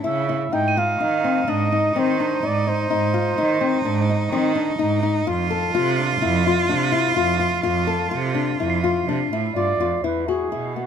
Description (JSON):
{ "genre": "contemporary instrumental, chamber music in an uneven meter", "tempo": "126 BPM", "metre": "5/4", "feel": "straight", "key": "unclear", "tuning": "A4 = 441 Hz", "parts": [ { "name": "bright cello", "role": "second line", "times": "0.0-9.8 s", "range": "D#4 to F4", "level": "-25 LUFS", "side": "right 4 dB", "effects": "none" }, { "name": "nylon-string guitar", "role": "arpeggios", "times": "0.0-10.9 s", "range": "B3 to A4", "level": "-23 LUFS", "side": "left 7 dB", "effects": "none" }, { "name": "clear cello", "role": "bass", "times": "0.0-10.9 s", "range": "E2 to D#3", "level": "-24 LUFS", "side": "right 5 dB", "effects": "none" }, { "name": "breathy flugelhorn", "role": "melody", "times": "0.1-4.6, 9.6-10.9 s", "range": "F#4 to G5", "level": "-24 LUFS", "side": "right 3 dB", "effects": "none" }, { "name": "crotales", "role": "texture", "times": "0.7-1.9, 8.7-10.0 s", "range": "C7 to D#7", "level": "-33 LUFS", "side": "right 6 dB", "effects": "none" } ], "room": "light reverb", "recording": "close, detailed microphones", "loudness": "-18 LUFS", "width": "side -8 dB against mid", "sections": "0.0-10.0 A section", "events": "none", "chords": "0.0 C#m; 0.5 G#; 5.3 F; 10.0 E" }